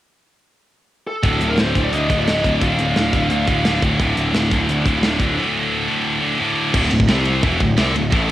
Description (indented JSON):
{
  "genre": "heavy metal",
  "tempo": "174 BPM",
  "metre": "4/4",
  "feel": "straight",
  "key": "D minor",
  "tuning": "A4 = 440 Hz",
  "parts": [
    { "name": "bluesy overdriven lead guitar", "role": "melody", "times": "1.1-3.8 s", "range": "A4 to F5", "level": "-24 LUFS", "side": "equal", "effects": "distortion, cassette tape, tape echo" },
    { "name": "high-gain distorted guitar", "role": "riff", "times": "1.2-8.3 s", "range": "D2 to C4", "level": "-22 LUFS", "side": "right 6 dB", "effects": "distortion, cassette tape" },
    { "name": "scooped high-gain guitar", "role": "riff", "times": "1.2-8.3 s", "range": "D2 to C4", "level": "-21 LUFS", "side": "left 5 dB", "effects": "distortion, cassette tape" },
    { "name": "fuzz picked electric bass", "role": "bass", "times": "1.2-8.3 s", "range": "D1 to D2", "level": "-21 LUFS", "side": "equal", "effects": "overdrive" },
    { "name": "tight metal drum kit", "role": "drums", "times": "1.2-8.3 s", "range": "crash cymbal, hi-hat, kick drum, ride cymbal, snare drum", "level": "-21 LUFS", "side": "equal", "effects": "cassette tape" }
  ],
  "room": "studio ambience",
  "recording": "home recording on cassette",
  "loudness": "-15 LUFS",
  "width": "side -14 dB against mid",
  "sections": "0.0-1.2 A section; 1.2-6.7 B section; 6.7-8.3 C section",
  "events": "break 5.4-6.7",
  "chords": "0.0 N.C.; 1.2 D5; 7.1 C5; 7.4 D5"
}